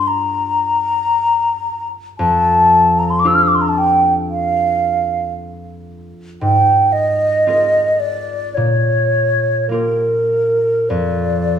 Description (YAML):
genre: classical, impressionist duo for flute and harp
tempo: 48-59 BPM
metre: 4/4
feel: rubato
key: unclear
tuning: A4 = 438 Hz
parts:
  - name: mellow hollow concert flute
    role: melody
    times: 0.0-11.6 s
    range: Bb4 to F6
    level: -14 LUFS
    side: equal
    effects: none
  - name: concert harp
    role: accompaniment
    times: 0.0-11.6 s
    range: F2 to C5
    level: -21 LUFS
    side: equal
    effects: none
room: wet recital hall reverb, RT60 1.3 s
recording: none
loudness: -13 LUFS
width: side -8 dB against mid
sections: 0.0-11.6 A section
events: none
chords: 0.0 Gm7; 2.2 Fsus2; 6.4 Ab69; 8.6 Bbm6; 10.9 N.C.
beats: 0.09 1.14 | 2.19 3.25 4.31 5.37 | 6.42 7.46 8.56 9.71 | 10.90